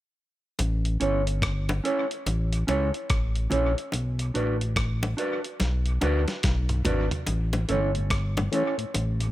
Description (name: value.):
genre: roots reggae.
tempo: 72 BPM.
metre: 4/4.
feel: swing 62% on 16ths.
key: A mixolydian.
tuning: A4 = 441 Hz.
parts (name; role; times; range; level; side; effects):
smooth gliding synth bass; bass; 0.6-9.3 s; G1 to D2; -26 LUFS; equal; none.
dusty soul sampler-style drum kit; drums; 0.6-9.3 s; hi-hat, kick drum, rim click, snare drum, toms; -30 LUFS; equal; dub echo.
bongos; percussion; 0.6-9.2 s; none; -31 LUFS; left 1 dB; none.
mellow electric guitar; accompaniment; 1.0-8.8 s; C#4 to D5; -29 LUFS; right 2 dB; tape echo.
mellow tonewheel organ; accompaniment; 7.5-9.3 s; A2 to C#4; -33 LUFS; left 5 dB; chorus vibrato, slow rotary speaker.
room: little or no reverb.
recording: none.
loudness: -24 LUFS.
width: side -15 dB against mid.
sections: 0.6-7.3 A section; 7.3-9.3 B section.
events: drum fill 5.6-7.3.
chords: 0.6 A; 3.9 Bm; 7.3 A.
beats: | 0.59 1.43 2.26 3.10 | 3.93 4.77 5.60 6.44 | 7.28 8.11 8.95.